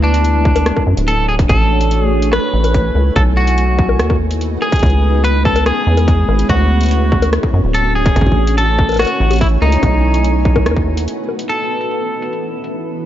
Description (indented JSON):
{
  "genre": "IDM",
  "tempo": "144 BPM",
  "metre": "4/4",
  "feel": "straight",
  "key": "C# minor",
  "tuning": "A4 = 439 Hz",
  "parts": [
    { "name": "clean electric guitar", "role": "melody", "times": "0.0-13.1 s", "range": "D4 to B4", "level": "-19 LUFS", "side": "equal", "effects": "tape echo" },
    { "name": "granular cloud pad", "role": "sustained chords", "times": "0.0-13.1 s", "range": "E3 to G#5", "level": "-20 LUFS", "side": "equal", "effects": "built-in reverb" },
    { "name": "deep acid bass", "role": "bass", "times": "0.0-11.1 s", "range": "D1 to F#2", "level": "-14 LUFS", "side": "equal", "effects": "tube saturation" },
    { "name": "booming analog drum machine", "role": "drums", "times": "0.1-12.7 s", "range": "bongos, hi-hat, rim click", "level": "-21 LUFS", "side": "left 4 dB", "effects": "low-pass filter on hats, small room ambience, low-pass filter on perc, low-pass filter on snare" },
    { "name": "electronic kick drum", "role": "drums", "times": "0.5-10.8 s", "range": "none", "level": "-16 LUFS", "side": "equal", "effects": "distortion, small room ambience" }
  ],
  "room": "light reverb",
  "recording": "dark, warm production, nothing above 7.7 kHz",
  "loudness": "-12 LUFS",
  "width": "side -12 dB against mid",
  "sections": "0.0-11.5 A section; 11.5-13.1 B section",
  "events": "break 11.1-11.5; filter sweep on ambient pad 11.5-13.1",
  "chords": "0.0 Dmaj7; 1.5 Amaj7; 3.2 B7; 4.8 C#m7; 6.5 Dmaj7; 8.2 Amaj7; 9.8 B7; 11.5 C#m7",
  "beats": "0.24 0.66 1.08 | 1.49 1.91 2.33 2.74 | 3.16 3.58 3.99 4.41 | 4.83 5.24 5.66 6.08 | 6.49 6.91 7.33 7.74 | 8.16 8.58 8.99 9.41 | 9.83 10.24 10.66 11.08 | 11.49 11.91 12.33 12.74"
}